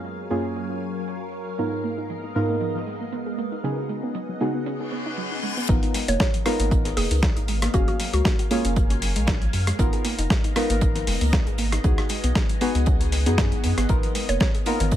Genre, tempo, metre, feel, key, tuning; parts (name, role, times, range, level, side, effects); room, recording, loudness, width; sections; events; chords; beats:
deep house; 117 BPM; 4/4; swing 54% on 16ths; G# dorian; A4 = 440 Hz
soft string machine; sustained chords; 0.0-15.0 s; F#3 to A#5; -33 LUFS; equal; phaser, ensemble chorus, sidechain pumping
deep mellow chord stab; stabs; 0.0-15.0 s; F#2 to E#5; -28 LUFS; equal; lush chorus, cassette tape, sidechain pumping, ping-pong delay
compact cocktail drum kit; drums; 0.0-15.0 s; hi-hat, snare drum; -39 LUFS; right 4 dB; sidechain pumping on hats, high-pass filter on hats, low-pass filter on hats, high-pass filter on snare, low-pass filter on snare, high-pass filter on room, low-pass filter on room
soft round pluck; arpeggios; 1.6-15.0 s; E#3 to G#4; -32 LUFS; right 2 dB; chorus, sidechain pumping, ping-pong delay
reverse cymbal; sound effects; 4.8-5.7 s; -31 LUFS; left 4 dB
round analog bass; bass; 5.7-15.0 s; E#1 to F#2; -24 LUFS; equal; sidechain pumping
electronic kick drum; drums; 5.7-15.0 s; -23 LUFS; equal
dusty soul sampler-style drum kit; drums; 5.8-14.9 s; hi-hat, rim click, snare drum; -27 LUFS; equal; overdrive
mallet-like synth pluck; melody; 6.1-8.5, 14.3-14.5 s; F#4 to C#5; -30 LUFS; equal; chorus, ping-pong delay
congas; percussion; 14.8-14.9 s; -29 LUFS; left 2 dB; sidechain pumping on perc
digital ambience; -21 LUFS; side -12 dB against mid
0.0-5.7 A section; 5.7-15.0 B section
reverse cymbal 4.8-5.7; drop 5.7-15.0
0.0 F#maj9; 1.6 G#m69; 3.6 C#9sus4; 5.7 G#m69; 7.7 F#maj9; 9.8 G#m69; 11.8 C#9sus4; 13.9 G#m69
0.05 0.56 1.07 | 1.58 2.10 2.61 3.12 | 3.64 4.15 4.66 5.17 | 5.69 6.20 6.71 7.23 | 7.74 8.25 8.77 9.28 | 9.79 10.30 10.82 11.33 | 11.84 12.36 12.87 13.38 | 13.89 14.41 14.92